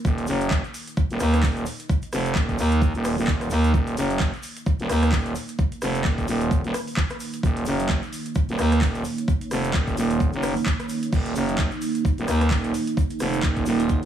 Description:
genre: bass house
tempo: 130 BPM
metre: 4/4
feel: swing 57% on 16ths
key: Eb minor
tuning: A4 = 440 Hz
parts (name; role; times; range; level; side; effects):
- deep dark ambient pad; sustained chords; 0.0-14.1 s; Bb3 to Eb5; -30 LUFS; right 4 dB; chorus, built-in reverb, sidechain pumping
- growling FM bass; bass; 0.0-14.1 s; Eb1 to Eb2; -22 LUFS; right 1 dB; overdrive, sidechain pumping
- electronic kick drum; drums; 0.0-14.0 s; none; -22 LUFS; equal; overdrive
- tube shaker; percussion; 0.1-14.1 s; none; -43 LUFS; left 7 dB; none
- garage drum kit; drums; 0.2-14.1 s; crash cymbal, handclaps, hi-hat, rim click; -31 LUFS; equal; overdrive
- bell-like FM electric piano; melody; 13.8-14.0 s; Eb4; -30 LUFS; right 5 dB; chorus
room: digital ambience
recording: heavily compressed radio sound, multiband compression, small room ambience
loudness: -21 LUFS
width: side -10 dB against mid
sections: 0.0-14.1 A section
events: none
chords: 0.0 Eb5

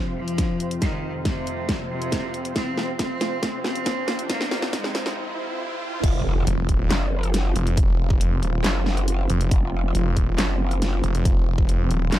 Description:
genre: heavy wobble dubstep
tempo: 138 BPM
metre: 4/4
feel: half-time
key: unclear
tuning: A4 = 436 Hz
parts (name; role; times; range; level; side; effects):
- bright cello; melody; 0.0-5.2 s; C3 to C4; -29 LUFS; equal; digital delay
- supersaw pad; sustained chords; 0.0-12.2 s; F2 to C5; -32 LUFS; equal; sidechain pumping, low-pass filter
- riser and impact; sound effects; 1.0-7.8 s; none; -33 LUFS; right 1 dB; none
- dubstep drum kit; drums; 0.3-12.2 s; crash cymbal, handclaps, hi-hat, snare drum; -27 LUFS; equal; none
- electronic kick drum; drums; 0.4-11.7 s; none; -22 LUFS; equal; none
- growl bass; bass; 6.0-12.2 s; F1 to Gb1; -23 LUFS; equal; chorus, overdrive
- snarling distorted saw bass; bass; 6.5-12.1 s; Eb1 to F1; -22 LUFS; equal; distortion, overdrive
room: little or no reverb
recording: dark, warm production, high-pass filter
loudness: -21 LUFS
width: side -14 dB against mid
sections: 0.0-6.0 A section; 6.0-12.2 B section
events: build-up 0.0-6.0; drum fill 0.0-5.2; filter sweep on supersaw synth 0.0-6.0; filter sweep 0.0-6.0; riser 1.0-6.0; break 5.2-6.0; drop 6.0-12.2; impact 6.0-7.8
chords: 0.0 F5

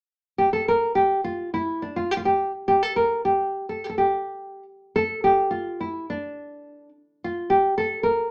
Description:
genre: medieval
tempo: 106 BPM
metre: 2/4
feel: straight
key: G dorian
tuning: A4 = 438 Hz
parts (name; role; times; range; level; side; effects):
- nylon-string guitar; solo; 0.4-8.3 s; D4 to Bb4; -24 LUFS; equal; none
room: moderate studio reverb, RT60 0.6 s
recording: none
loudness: -24 LUFS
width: mono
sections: 0.4-4.9 A section; 4.9-8.3 B section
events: none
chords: none

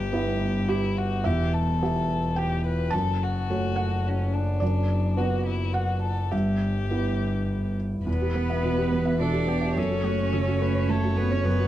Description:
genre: neoclassical piano and strings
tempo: 106 BPM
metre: 3/4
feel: rubato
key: E dorian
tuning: A4 = 440 Hz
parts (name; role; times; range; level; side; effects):
- rich violin; melody; 0.0-11.7 s; C#4 to D5; -32 LUFS; left 6 dB; none
- felt-muted upright piano; accompaniment; 0.0-11.7 s; E2 to A5; -27 LUFS; right 2 dB; none
- warm double bass; bass; 0.0-11.7 s; E1 to G1; -27 LUFS; equal; none
- dark cello; second line; 8.1-11.7 s; A3 to D4; -30 LUFS; right 5 dB; none
- dark viola; accompaniment; 8.6-11.7 s; F#4 to C#5; -33 LUFS; right 1 dB; none
room: light reverb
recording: dark, warm production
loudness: -23 LUFS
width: side -13 dB against mid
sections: 0.0-8.1 A section; 8.1-11.7 A section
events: none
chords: 0.0 Em/G; 1.3 Em; 2.9 F#m; 4.6 Bm/F#; 6.3 Em/G; 8.1 Em; 9.8 F#m

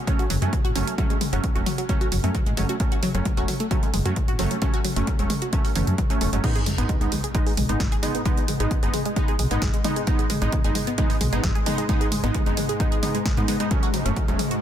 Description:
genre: driving peak-time techno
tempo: 132 BPM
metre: 4/4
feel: straight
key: G# phrygian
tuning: A4 = 441 Hz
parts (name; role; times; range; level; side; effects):
- rave stab; stabs; 0.1-14.4 s; F#3 to D#4; -28 LUFS; right 2 dB; chorus, built-in reverb, sidechain pumping, tape echo
- electronic kick drum; drums; 0.1-14.3 s; none; -24 LUFS; equal; none
- techno drum kit; drums; 0.1-14.6 s; crash cymbal, hi-hat, snare drum, toms; -29 LUFS; left 1 dB; none
- wide unison pluck; riff; 0.2-14.5 s; E3 to G#4; -30 LUFS; equal; sidechain pumping, ping-pong delay
- growling FM bass; bass; 0.3-14.3 s; E1 to G#2; -25 LUFS; equal; sidechain pumping
- swarming drone; drone; 7.3-14.6 s; G#2 to G#3; -32 LUFS; left 2 dB; built-in reverb, sidechain pumping
- sub drop; sound effects; 6.4-8.3 s; none; -32 LUFS; equal; none
room: little or no reverb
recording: dense, heavily limited modern master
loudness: -20 LUFS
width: side -10 dB against mid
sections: 0.0-6.4 A section; 6.4-14.6 B section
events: drop 6.4-14.6; impact 6.4-8.3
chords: 0.0 F#m; 6.4 G#m; 13.7 F#m

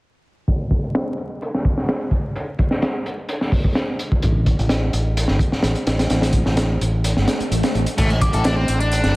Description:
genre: breakbeat, breaks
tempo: 128 BPM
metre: 4/4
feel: straight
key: A minor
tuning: A4 = 441 Hz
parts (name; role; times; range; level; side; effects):
- crunchy breakbeat drum kit; drums; 0.5-9.1 s; crash cymbal, hi-hat, kick drum, snare drum; -19 LUFS; equal; low-pass filter on kick, low-pass filter on hats, low-pass filter on cymbals, low-pass filter on snare, low-pass filter on room
- fingered electric bass; bass; 4.2-9.1 s; G1 to A1; -20 LUFS; equal; tube saturation
- swell; sound effects; 7.2-8.0 s; none; -28 LUFS; right 1 dB; none
- sludgy distorted guitar; riff; 8.0-9.2 s; A3 to A4; -22 LUFS; equal; overdrive, ping-pong delay
- electronic hi-hat; drums; 8.0-9.1 s; none; -34 LUFS; right 3 dB; overdrive
- soft synth bell; melody; 8.2-8.4 s; D6; -29 LUFS; left 1 dB; chorus, old record sound, ping-pong delay
room: small room ambience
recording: vinyl crackle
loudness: -17 LUFS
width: side -21 dB against mid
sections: 0.5-8.0 A section; 8.0-9.2 B section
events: filter sweep on drum 0.5-8.0; kick drops out 7.0-8.0; swell 7.2-8.0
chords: 0.5 N.C.; 8.0 Am

